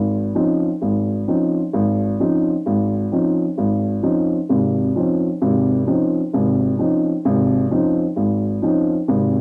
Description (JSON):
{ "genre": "jazz", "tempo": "130 BPM", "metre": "4/4", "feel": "swing 68% on 8ths", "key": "Db major", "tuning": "A4 = 439 Hz", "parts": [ { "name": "dark upright piano", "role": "solo", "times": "0.0-9.4 s", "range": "Ab1 to Eb4", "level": "-19 LUFS", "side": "equal", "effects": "cassette tape" } ], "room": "light reverb", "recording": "home recording on cassette", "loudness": "-19 LUFS", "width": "mono", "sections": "0.0-9.4 A section", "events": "none", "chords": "0.0 Dbmaj9" }